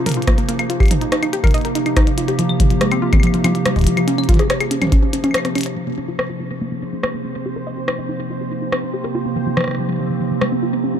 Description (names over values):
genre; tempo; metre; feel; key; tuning
IDM; 142 BPM; 4/4; straight; unclear; A4 = 441 Hz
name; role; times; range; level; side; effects
warbly tape-like pad; sustained chords; 0.0-11.0 s; C3 to Ab4; -22 LUFS; right 1 dB; chorus, built-in reverb
warbly dusty pluck; arpeggios; 0.0-11.0 s; F3 to Eb5; -22 LUFS; equal; chorus, tape echo
glitchy drum kit; drums; 0.1-10.5 s; claves, hi-hat, rim click, toms; -23 LUFS; left 1 dB; low-pass filter on snare, low-pass filter on hats, low-pass filter on perc, low-pass filter on toms, tape echo
electronic kick drum; drums; 0.3-5.0 s; none; -15 LUFS; equal; none
bubbling stepped-filter texture; texture; 5.8-11.0 s; C4 to C5; -30 LUFS; right 3 dB; chorus, built-in reverb
room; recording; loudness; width
light reverb; dark, warm production; -16 LUFS; side -9 dB against mid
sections
0.0-5.8 A section; 5.8-11.0 B section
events
break 5.3-5.8; filter sweep on synth arpeggio sound 5.8-11.0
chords
0.0 Bb9sus4; 0.7 Eb; 2.4 F7sus2; 4.1 Dbmaj9; 5.8 Bb9sus4; 7.5 Eb; 9.1 F7sus2